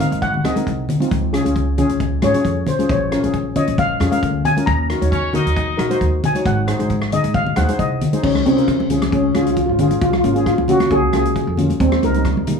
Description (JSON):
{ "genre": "calypso", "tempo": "135 BPM", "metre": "4/4", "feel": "swing 53% on 16ths", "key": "Db major", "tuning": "A4 = 441 Hz", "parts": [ { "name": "steel pan", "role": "melody", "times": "0.0-12.5 s", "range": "C4 to Bb5", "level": "-19 LUFS", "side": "equal", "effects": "none" }, { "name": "steel pan", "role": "accompaniment", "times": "0.0-12.6 s", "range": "G3 to Eb5", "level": "-22 LUFS", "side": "left 2 dB", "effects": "none" }, { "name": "upright bass", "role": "bass", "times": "0.0-12.6 s", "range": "Ab1 to F2", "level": "-21 LUFS", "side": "equal", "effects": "none" }, { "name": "natural country drum kit", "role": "drums", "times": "0.0-12.6 s", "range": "crash cymbal, hi-hat, kick drum, rim click", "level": "-25 LUFS", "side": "equal", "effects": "none" }, { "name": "congas", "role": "percussion", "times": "0.0-12.6 s", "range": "none", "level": "-23 LUFS", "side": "left 1 dB", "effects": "none" }, { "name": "bright horn section", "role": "second line", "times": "5.1-6.1 s", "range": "Db4 to Eb5", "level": "-24 LUFS", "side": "left 2 dB", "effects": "none" } ], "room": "moderate small room reverb, RT60 0.5 s", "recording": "small room ambience", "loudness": "-15 LUFS", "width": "side -5 dB against mid", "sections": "0.0-8.2 A section; 8.2-12.6 B section", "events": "steel pan solo 0.0-8.2", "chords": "0.0 Ab; 1.1 Db; 2.9 Bbm7; 4.7 Ebm7; 6.5 Ab7; 8.2 Dbmaj7; 10.0 Bbm7; 11.8 Eb7", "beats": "0.22 0.67 | 1.11 1.56 2.00 2.45 | 2.89 3.34 3.78 4.23 | 4.67 5.12 5.56 6.01 | 6.46 6.90 7.35 7.79 | 8.24 8.68 9.13 9.58 | 10.02 10.47 10.92 11.36 | 11.81 12.26" }